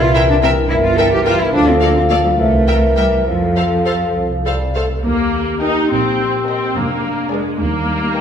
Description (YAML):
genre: quick classical-period movement for symphony orchestra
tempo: 69 BPM (dotted quarters)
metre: 6/8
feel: uneven beats, rubato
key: F major, Eb major from 5.1 s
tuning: A4 = 441 Hz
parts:
  - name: dark clarinet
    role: second line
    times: 0.0-4.8 s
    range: A4 to Bb4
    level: -22 LUFS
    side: left 2 dB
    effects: none
  - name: mellow bassoon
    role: accompaniment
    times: 0.0-4.9 s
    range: E3 to A3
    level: -22 LUFS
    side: right 1 dB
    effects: none
  - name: mellow French horn section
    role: sustained chords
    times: 0.0-8.2 s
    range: G3 to F5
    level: -19 LUFS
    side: left 2 dB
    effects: none
  - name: rich chamber double bass section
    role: bass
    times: 0.0-8.2 s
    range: F1 to F2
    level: -20 LUFS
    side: right 1 dB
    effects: none
  - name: rich studio cello section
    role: bass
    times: 0.0-8.2 s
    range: Eb2 to A4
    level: -20 LUFS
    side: equal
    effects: none
  - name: rich chamber violin section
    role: second line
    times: 0.1-8.2 s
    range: Bb4 to E5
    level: -27 LUFS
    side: left 2 dB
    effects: none
  - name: rich studio viola section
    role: accompaniment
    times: 0.1-8.2 s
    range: Ab3 to Bb4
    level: -21 LUFS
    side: equal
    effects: none
  - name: rich symphonic violin section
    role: melody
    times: 0.2-8.2 s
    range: F5 to Ab5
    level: -28 LUFS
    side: left 2 dB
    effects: none
room: wet recital hall reverb, RT60 1.7 s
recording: recorded in a church or concert hall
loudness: -13 LUFS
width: side -8 dB against mid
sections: 0.0-5.1 A section; 5.1-8.2 B section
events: none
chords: 0.0 C7; 1.5 Dm; 2.4 C7; 3.3 F; 5.1 Eb; 6.8 Bb7/F; 7.6 Eb